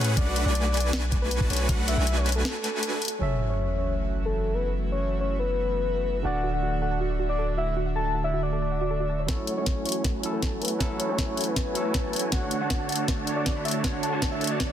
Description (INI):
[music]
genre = future bass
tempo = 158 BPM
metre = 4/4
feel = half-time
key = unclear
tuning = A4 = 440 Hz
[part]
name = soft octave-layered synth lead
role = melody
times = 0.0-14.7 s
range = A4 to A5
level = -30 LUFS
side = left 2 dB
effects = chorus, sidechain pumping, digital delay
[part]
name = supersaw chords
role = riff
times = 0.0-2.9, 9.3-14.7 s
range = A3 to B5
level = -30 LUFS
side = right 1 dB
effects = cassette tape, sidechain pumping, low-pass filter, ping-pong delay
[part]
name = long sustained 808-style bass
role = bass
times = 0.0-9.3 s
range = D1 to A2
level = -28 LUFS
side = equal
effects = sidechain pumping
[part]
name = trap drum kit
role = drums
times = 0.0-3.3, 9.3-14.7 s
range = crash cymbal, hi-hat, snare drum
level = -31 LUFS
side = left 1 dB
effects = low-pass filter on hats, soft clipping on snare, low-pass filter on snare, low-pass filter on cymbals
[part]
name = electronic kick drum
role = drums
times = 0.2-1.8, 9.3-14.7 s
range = none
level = -28 LUFS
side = equal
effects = none
[part]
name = barky tine electric piano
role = accompaniment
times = 3.2-14.7 s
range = D3 to E5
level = -33 LUFS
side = right 3 dB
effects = medium stereo tremolo, sidechain pumping, ping-pong delay
[part]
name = airy breathy pad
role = sustained chords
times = 3.2-14.7 s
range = D3 to E5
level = -36 LUFS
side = right 1 dB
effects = chorus, sidechain pumping
[part]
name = sub drop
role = sound effects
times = 3.2-4.7 s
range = none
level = -33 LUFS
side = equal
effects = none
[part]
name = soft round pluck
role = arpeggios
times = 6.2-9.2 s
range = F#4 to A5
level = -35 LUFS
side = right 6 dB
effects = chorus, sidechain pumping, ping-pong delay
[sound]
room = light reverb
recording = dense, heavily limited modern master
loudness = -24 LUFS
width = side -10 dB against mid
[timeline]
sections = 0.0-3.2 A section; 3.2-9.3 B section; 9.3-14.7 C section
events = drop 0.0-3.2; break 2.5-3.2; impact 3.2-4.7; build-up 9.3-14.7; drum fill 9.3-14.7; filter sweep on supersaw synth 9.3-14.7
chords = 0.2 Bm7; 3.2 F#m7; 6.2 D; 9.3 F#m7; 12.3 Dmaj7